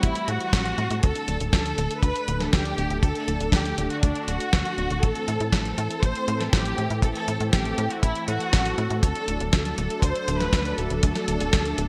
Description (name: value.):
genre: italo disco.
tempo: 120 BPM.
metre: 4/4.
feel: straight.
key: unclear.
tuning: A4 = 439 Hz.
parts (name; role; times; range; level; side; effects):
rich studio violin section; melody; 0.0-11.9 s; D4 to C5; -31 LUFS; equal; digital delay.
warm analog pad; sustained chords; 0.0-11.9 s; D3 to A4; -34 LUFS; equal; chorus.
tight sequencer bass; bass; 0.0-11.9 s; D1 to A2; -31 LUFS; equal; none.
clean 12-bit digital drum machine; drums; 0.0-11.9 s; hi-hat, snare drum; -30 LUFS; equal; gated reverb.
kick drum; drums; 0.0-11.6 s; none; -24 LUFS; equal; none.
room: moderate plate reverb, RT60 1.5 s, small room ambience.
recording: bright 1980s-style digital production.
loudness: -24 LUFS.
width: mono.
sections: 0.0-11.9 A section.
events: none.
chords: 0.0 Am; 1.0 D; 5.0 Am; 9.0 D.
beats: 0.03 0.53 | 1.03 1.53 2.03 2.53 | 3.03 3.53 4.03 4.53 | 5.03 5.53 6.03 6.53 | 7.03 7.53 8.03 8.53 | 9.03 9.53 10.03 10.53 | 11.03 11.53.